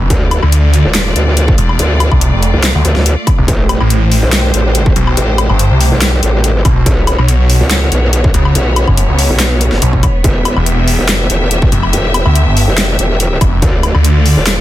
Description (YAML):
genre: heavy wobble dubstep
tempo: 142 BPM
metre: 4/4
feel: swing 53% on 16ths, half-time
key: E phrygian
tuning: A4 = 440 Hz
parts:
  - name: clear symphonic string section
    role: sustained chords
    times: 0.0-14.6 s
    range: A3 to E5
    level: -19 LUFS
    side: equal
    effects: sidechain pumping
  - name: snarling distorted saw bass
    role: bass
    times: 0.0-14.3 s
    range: E1 to D2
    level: -11 LUFS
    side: equal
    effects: distortion, overdrive
  - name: growl bass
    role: bass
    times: 0.1-14.6 s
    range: E1 to D2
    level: -12 LUFS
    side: equal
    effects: distortion, chorus, overdrive
  - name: dubstep drum kit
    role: drums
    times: 0.1-14.6 s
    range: handclaps, hi-hat, snare drum, woodblock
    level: -16 LUFS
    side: left 2 dB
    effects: none
  - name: electronic kick drum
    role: drums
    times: 0.1-13.7 s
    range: none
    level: -13 LUFS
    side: equal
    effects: distortion
room: little or no reverb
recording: dense, heavily limited modern master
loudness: -9 LUFS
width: side -14 dB against mid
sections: 0.0-14.6 A section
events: none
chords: 0.1 Dm; 3.5 Am7; 6.9 Bsus2; 10.2 Em; 13.6 Dm